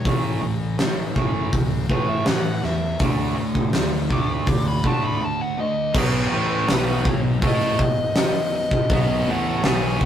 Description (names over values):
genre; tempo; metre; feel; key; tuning
quiet-loud alternative rock; 81 BPM; 4/4; straight; unclear; A4 = 440 Hz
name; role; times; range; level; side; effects
fuzz lead guitar; melody; 0.0-10.1 s; B4 to D6; -26 LUFS; left 2 dB; distortion
distorted electric guitar; riff; 0.0-10.1 s; A2 to A4; -26 LUFS; right 4 dB; distortion
thick fuzz guitar; riff; 0.0-10.1 s; A2 to A4; -29 LUFS; left 5 dB; distortion
fuzz fingered electric bass; bass; 0.1-10.1 s; F#1 to A2; -28 LUFS; equal; overdrive
huge arena drum kit; drums; 0.1-10.1 s; crash cymbal, hi-hat, kick drum, snare drum; -22 LUFS; equal; none
string machine, cellos; sustained chords; 5.9-10.1 s; B3 to F#5; -36 LUFS; left 1 dB; none
scooped high-gain guitar; riff; 5.9-10.1 s; A2 to A4; -31 LUFS; left 2 dB; distortion
room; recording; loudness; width
light reverb; rough rehearsal-room recording, tube saturation; -19 LUFS; side -10 dB against mid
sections
0.0-6.0 A section; 6.0-10.1 B section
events
lead electric guitar solo 0.0-6.0; break 5.2-6.0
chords
0.1 A5; 3.0 D5; 6.0 B